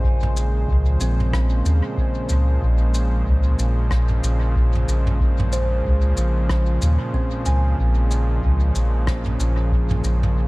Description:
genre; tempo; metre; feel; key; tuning
ambient dub; 93 BPM; 4/4; swing 58% on 16ths; Bb minor; A4 = 440 Hz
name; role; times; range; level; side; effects
warm analog pad; sustained chords; 0.0-10.5 s; Bb2 to C5; -26 LUFS; equal; chorus
kalimba; arpeggios; 0.0-9.9 s; C4 to C6; -33 LUFS; right 2 dB; dub echo
soft dub sub bass; bass; 0.0-10.5 s; Bb1 to Eb2; -19 LUFS; equal; none
electronic kick drum; drums; 0.0-9.9 s; none; -24 LUFS; equal; none
soft brush drum kit; drums; 0.2-10.3 s; rim click, shaker, toms; -29 LUFS; equal; dub echo
room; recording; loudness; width
small room reverb; none; -17 LUFS; side -22 dB against mid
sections
0.0-10.5 A section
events
none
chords
0.0 Bbm9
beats
| 0.04 0.69 1.33 1.98 | 2.62 3.27 3.91 4.56 | 5.20 5.85 6.49 7.14 | 7.78 8.43 9.07 9.72 | 10.36

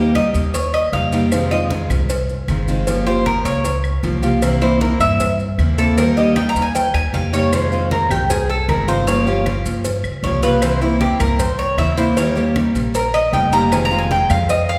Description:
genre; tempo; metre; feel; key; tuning
latin, Cuban son and guajira; 155 BPM; 4/4; straight; F minor; A4 = 439 Hz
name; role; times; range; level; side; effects
picked steel-string acoustic guitar; accompaniment; 0.0-14.5 s; C3 to G4; -22 LUFS; equal; none
upright bass; bass; 0.0-14.8 s; F1 to G2; -24 LUFS; equal; none
cowbell; percussion; 0.1-14.7 s; none; -29 LUFS; equal; none
Cuban tres; arpeggios; 0.2-14.8 s; E4 to Bb5; -22 LUFS; equal; none
claves; percussion; 0.2-14.5 s; none; -38 LUFS; equal; none
congas; percussion; 0.2-14.8 s; none; -29 LUFS; equal; none
maracas; percussion; 0.2-14.8 s; none; -38 LUFS; equal; none
room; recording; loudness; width
wet recital hall reverb, RT60 1.6 s; recorded in a church or concert hall; -17 LUFS; mono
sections
0.0-14.8 A section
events
Cuban tres solo 0.0-14.8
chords
0.0 Eb; 1.3 Fm7; 2.9 Gm7b5; 4.4 C7; 6.0 Eb; 7.5 Fm7; 9.1 Gm7b5; 10.6 C7; 12.2 Eb; 13.7 Fm7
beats
0.15 0.54 0.93 | 1.32 1.71 2.10 2.48 | 2.87 3.26 3.65 4.04 | 4.43 4.81 5.20 5.59 | 5.98 6.36 6.75 7.14 | 7.53 7.91 8.30 8.69 | 9.07 9.46 9.85 10.24 | 10.62 11.01 11.40 11.79 | 12.17 12.56 12.95 13.33 | 13.72 14.11 14.50

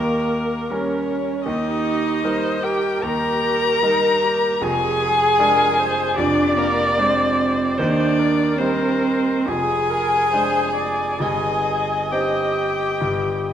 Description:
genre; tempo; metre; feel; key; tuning
classical, slow romantic movement for piano quartet; 65-81 BPM; 4/4; rubato; C minor; A4 = 442 Hz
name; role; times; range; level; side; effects
muted violin; melody; 0.0-13.5 s; Bb4 to Bb5; -24 LUFS; left 7 dB; none
muted cello; second line; 0.0-13.5 s; Bb3 to Bb4; -20 LUFS; right 2 dB; none
muted viola; accompaniment; 0.0-13.5 s; Eb4 to Eb5; -25 LUFS; right 2 dB; none
warm concert grand piano; accompaniment; 0.0-13.5 s; F1 to D5; -25 LUFS; left 1 dB; none
room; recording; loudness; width
wet scoring stage reverb, RT60 1.7 s; none; -17 LUFS; side -9 dB against mid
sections
0.0-13.5 A section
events
none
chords
0.0 Eb7; 1.5 Eb; 4.6 Ddim/F; 7.8 Cm/Eb; 9.5 Ddim/F; 11.2 Cm/G; 13.0 N.C.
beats
0.72 | 1.48 2.25 3.04 3.84 | 4.62 5.39 6.18 6.98 | 7.78 8.59 9.47 10.32 | 11.19 12.11 13.00

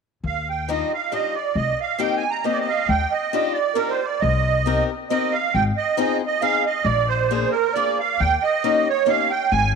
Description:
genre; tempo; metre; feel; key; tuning
musette waltz; 136 BPM; 3/4; rubato; Eb major; A4 = 436 Hz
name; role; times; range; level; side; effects
upright bass; bass; 0.2-9.8 s; Ab1 to Eb2; -22 LUFS; left 3 dB; none
musette accordion; melody; 0.3-9.7 s; Bb4 to Bb5; -20 LUFS; right 7 dB; none
picked swing-style acoustic guitar; accompaniment; 0.7-9.3 s; G3 to Bb4; -26 LUFS; left 12 dB; none
room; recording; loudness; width
moderate echo chamber reverb, RT60 2.4 s; 1960s-style stereo with parts hard left and right; -19 LUFS; side -5 dB against mid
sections
0.2-2.9 A section; 2.9-9.8 B section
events
none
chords
0.2 Ebmaj9; 1.6 Cm7; 2.9 Ebmaj9; 4.2 Cm7; 5.5 Ab6; 6.8 Bb7; 8.2 Eb7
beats
| 0.23 0.67 1.11 | 1.55 1.99 2.44 | 2.88 3.33 3.78 | 4.22 4.66 5.10 | 5.54 5.97 6.40 | 6.84 7.29 7.74 | 8.19 8.63 9.07 | 9.51

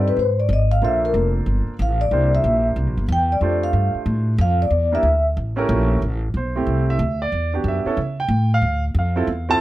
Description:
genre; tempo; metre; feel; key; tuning
jazz, small-group swing and bop; 185 BPM; 4/4; swing 64% on 8ths; A minor from 6.0 s; A4 = 441 Hz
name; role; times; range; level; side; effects
vibraphone with soft mallets; melody; 0.0-5.2 s; Bb4 to G5; -20 LUFS; left 1 dB; none
warm grand piano; accompaniment; 0.0-9.6 s; A3 to A5; -23 LUFS; right 3 dB; none
upright bass; bass; 0.0-9.6 s; F1 to C#3; -20 LUFS; equal; none
room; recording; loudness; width
light reverb; none; -17 LUFS; side -15 dB against mid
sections
0.0-6.0 A section; 6.0-9.6 A section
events
vibraphone solo 0.0-6.0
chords
0.2 G#; 0.8 Gm11; 2.1 C9; 3.4 F69; 4.7 Em7b5; 5.4 A7b9; 6.0 Am9; 7.3 Em9; 8.0 A7; 8.6 Dm7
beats
0.17 0.50 | 0.82 1.15 1.47 1.80 | 2.12 2.45 2.77 3.10 | 3.42 3.75 4.07 4.39 | 4.72 5.04 5.37 5.70 | 6.02 6.35 6.67 7.00 | 7.32 7.65 7.97 8.30 | 8.63 8.95 9.28 9.60

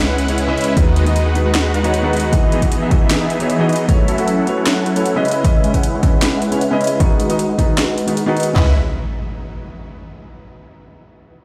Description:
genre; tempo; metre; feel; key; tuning
future bass; 154 BPM; 4/4; half-time; C# minor; A4 = 441 Hz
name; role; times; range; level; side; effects
supersaw chords; riff; 0.0-8.7 s; E3 to F#5; -21 LUFS; equal; sidechain pumping, low-pass filter, tape echo
warm 808-style bass; bass; 0.0-2.3, 8.6-8.7 s; C#2 to D#2; -19 LUFS; equal; sidechain pumping
trap drum kit; drums; 0.2-8.5 s; hi-hat, snare drum; -25 LUFS; equal; none
felt-muted upright piano; accompaniment; 0.3-8.7 s; C#3 to F#5; -24 LUFS; equal; sidechain pumping, tape echo
big-room dance drum kit; drums; 0.8-8.7 s; handclaps, kick drum, snare drum, toms; -18 LUFS; equal; none
impact; sound effects; 8.8-10.1 s; none; -28 LUFS; equal; none
room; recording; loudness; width
light reverb, digital ambience; played on a big sound system in a bare room, stone room reverb; -16 LUFS; mono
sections
0.0-8.6 A section; 8.6-10.1 B section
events
filter sweep on supersaw synth 0.0-8.6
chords
0.0 C#m7; 0.8 G#m7/D#; 2.3 Emaj7; 3.9 A6; 5.2 C#m7; 7.0 G#m7/D#; 8.6 C#m7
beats
0.38 | 0.77 1.16 1.55 1.94 | 2.33 2.72 3.11 3.50 | 3.89 4.28 4.67 5.05 | 5.44 5.83 6.22 6.61 | 7.00 7.39 7.78 8.17 | 8.56 8.95 9.34 9.73

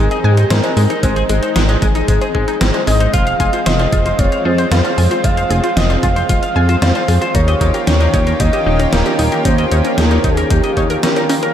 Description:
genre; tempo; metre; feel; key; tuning
synthwave; 114 BPM; 4/4; straight; unclear; A4 = 443 Hz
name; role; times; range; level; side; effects
expressive synth lead; melody; 0.0-11.5 s; G4 to F5; -19 LUFS; equal; chorus, diffuse ambient delay
lush unison pad; sustained chords; 0.0-11.5 s; Eb3 to G4; -20 LUFS; equal; chorus, sidechain pumping
wide unison pluck; arpeggios; 0.0-11.5 s; Bb3 to Ab5; -23 LUFS; left 2 dB; analog delay
semi-hollow electric guitar; riff; 0.0-11.5 s; Ab3 to F5; -24 LUFS; left 2 dB; lush chorus, analog delay
chorused synth bass; bass; 0.0-11.0 s; Eb1 to Ab2; -15 LUFS; equal; tube saturation, sidechain pumping
gated 80s digital drum machine; drums; 0.1-11.5 s; hi-hat, snare drum; -21 LUFS; equal; gated reverb, gated reverb snare, overdrive
electronic kick drum; drums; 1.0-10.9 s; none; -17 LUFS; equal; overdrive
room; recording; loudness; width
moderate cathedral reverb, RT60 6.2 s; dreamy mix soaked in reverb; -12 LUFS; side -10 dB against mid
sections
0.0-11.5 A section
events
none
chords
0.0 Ab; 3.1 Fm; 7.3 Eb7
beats
0.51 | 1.03 1.56 2.08 2.61 | 3.14 3.66 4.19 4.71 | 5.24 5.77 6.29 6.82 | 7.35 7.87 8.40 8.93 | 9.45 9.98 10.51 11.03

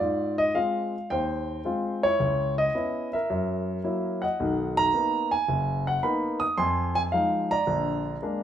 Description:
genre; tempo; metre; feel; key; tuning
solo jazz; 110 BPM; 4/4; swing 68% on 8ths; unclear; A4 = 440 Hz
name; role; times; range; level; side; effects
warm grand piano; solo; 0.0-8.4 s; F#1 to D#6; -24 LUFS; equal; none
room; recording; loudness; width
moderate large studio reverb, RT60 1.2 s; minimal, uncompressed stereo recording; -24 LUFS; side -10 dB against mid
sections
0.0-8.4 A section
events
none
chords
0.0 Ab6; 2.2 Dbm7; 3.3 Gb7; 4.4 Bmaj7; 6.6 Fm7; 7.7 Bb7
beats
| 0.01 0.56 1.11 1.65 | 2.20 2.75 3.29 3.84 | 4.39 4.93 5.48 6.03 | 6.58 7.12 7.67 8.22

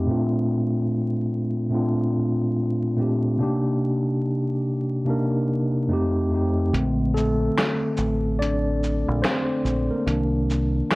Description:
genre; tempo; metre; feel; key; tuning
lo-fi hip hop; 72 BPM; 4/4; swing 64% on 16ths; Bb major; A4 = 438 Hz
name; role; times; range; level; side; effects
mellow tine electric piano; accompaniment; 0.0-11.0 s; F2 to D5; -22 LUFS; equal; medium stereo tremolo, low-pass filter
deep dub fingered electric bass; bass; 6.7-10.8 s; A1 to C2; -24 LUFS; equal; tube saturation
lo-fi sampler-style drum kit; drums; 6.7-11.0 s; finger snaps, hi-hat, shaker, snare drum; -26 LUFS; equal; none
room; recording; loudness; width
light reverb; worn, warbling old tape, cassette tape, vinyl crackle, warbly pitch drift; -21 LUFS; side -22 dB against mid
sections
0.0-6.7 A section; 6.7-11.0 B section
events
filter sweep on tine electric piano 0.0-6.7; kick muted 6.7-11.0; tine electric piano solo 6.7-11.0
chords
0.1 Bbmaj9; 3.4 Cm7; 5.9 F7; 6.7 Bbmaj9; 10.1 Cm7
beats
| 0.06 0.90 1.73 2.56 | 3.40 4.23 5.06 5.89 | 6.73 7.56 8.39 9.23 | 10.06 10.89

